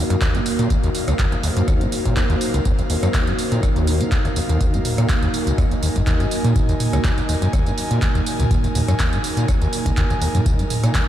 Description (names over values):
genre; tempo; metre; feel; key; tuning
acid house; 123 BPM; 4/4; swing 54% on 16ths; Eb dorian; A4 = 441 Hz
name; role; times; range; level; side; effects
dark analog pad; sustained chords; 0.0-11.1 s; Bb3 to Ab5; -26 LUFS; right 2 dB; chorus, sidechain pumping
overdriven acid bass; riff; 0.0-11.0 s; Db2 to Gb3; -21 LUFS; equal; distortion, tape echo
airy breathy pad; texture; 0.0-11.1 s; Eb4 to Ab5; -28 LUFS; equal; chorus, sidechain pumping
booming analog drum machine; drums; 0.1-11.1 s; handclaps, hi-hat, rim click, tambourine, toms; -26 LUFS; right 1 dB; none
electronic kick drum; drums; 0.2-11.1 s; none; -21 LUFS; equal; none
room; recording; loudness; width
moderate cathedral reverb, RT60 5.5 s; dreamy mix soaked in reverb; -17 LUFS; side -12 dB against mid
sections
0.0-11.1 A section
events
none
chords
0.0 Ebm